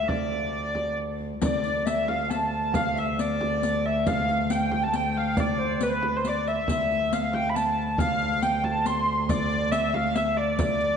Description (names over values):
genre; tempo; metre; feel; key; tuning
medieval dance; 137 BPM; 3/4; straight; D dorian; A4 = 439 Hz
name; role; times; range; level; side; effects
rich hurdy-gurdy; melody; 0.0-11.0 s; B4 to C6; -27 LUFS; right 1 dB; none
bright baroque flute; second line; 0.0-11.0 s; B4 to C6; -30 LUFS; left 5 dB; none
warm viola da gamba; drone; 0.0-11.0 s; D2; -30 LUFS; right 2 dB; none
frame drum; percussion; 0.1-10.8 s; none; -32 LUFS; right 2 dB; none
riq; percussion; 1.4-10.9 s; none; -33 LUFS; left 5 dB; none
room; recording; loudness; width
wet scoring stage reverb, RT60 1.7 s; dark, warm production, nothing above 10.7 kHz; -23 LUFS; side -7 dB against mid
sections
0.0-1.4 A section; 1.4-11.0 A section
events
speeding up 0.0-11.0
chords
none